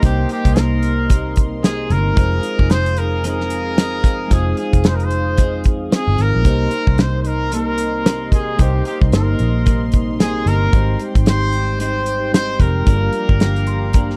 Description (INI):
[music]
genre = indie pop, bedroom pop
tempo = 112 BPM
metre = 4/4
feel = swing 60% on 16ths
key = C minor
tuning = A4 = 439 Hz
[part]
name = bright trumpet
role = melody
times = 0.0-14.2 s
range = G4 to C5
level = -25 LUFS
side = equal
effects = lush chorus, slapback echo
[part]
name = tine electric piano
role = accompaniment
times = 0.0-14.2 s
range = G3 to C6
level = -30 LUFS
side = equal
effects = overdrive
[part]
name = twelve-string electric guitar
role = accompaniment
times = 0.0-14.2 s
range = G2 to Ab4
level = -28 LUFS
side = equal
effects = analog chorus, vibrato effect
[part]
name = warm analog pad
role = sustained chords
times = 0.0-14.2 s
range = G4 to Eb6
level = -34 LUFS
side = equal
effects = chorus
[part]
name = vintage muted picked electric bass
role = bass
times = 0.0-14.2 s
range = F1 to C2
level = -21 LUFS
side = equal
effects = none
[part]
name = damped 70s drum kit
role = drums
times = 0.0-14.2 s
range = hi-hat, kick drum, snare drum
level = -17 LUFS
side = equal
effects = none
[sound]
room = studio ambience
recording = dry, close 1970s-style studio recording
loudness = -17 LUFS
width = mono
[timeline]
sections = 0.0-14.2 A section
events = tine electric piano fill 13.4-14.2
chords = 0.0 Cm7; 2.2 Fm7; 6.5 Cm7; 10.7 Abmaj7; 12.9 Gm7